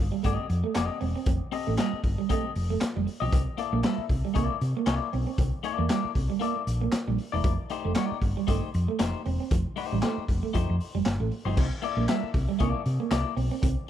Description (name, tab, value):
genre	funk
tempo	116 BPM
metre	4/4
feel	swing 56% on 16ths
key	C mixolydian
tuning	A4 = 440 Hz
part	hollow-body short-scale fingered electric bass	bass	0.0-13.7 s	E1 to C3	-28 LUFS	equal	none
part	electric guitar at the edge of break-up	riff	0.1-13.7 s	E3 to C4	-32 LUFS	right 11 dB	spring reverb
part	clean electric guitar	accompaniment	0.2-13.3 s	A3 to E5	-33 LUFS	left 10 dB	spring reverb
part	raw garage drum kit	drums	0.2-13.8 s	crash cymbal, handclaps, hi-hat, kick drum, snare drum	-29 LUFS	left 1 dB	none
room	little or no reverb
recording	none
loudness	-25 LUFS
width	side -11 dB against mid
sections	0.0-11.6 A section; 11.6-13.9 A section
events	none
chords	0.0 F9; 3.3 C13; 7.4 F9; 11.6 C13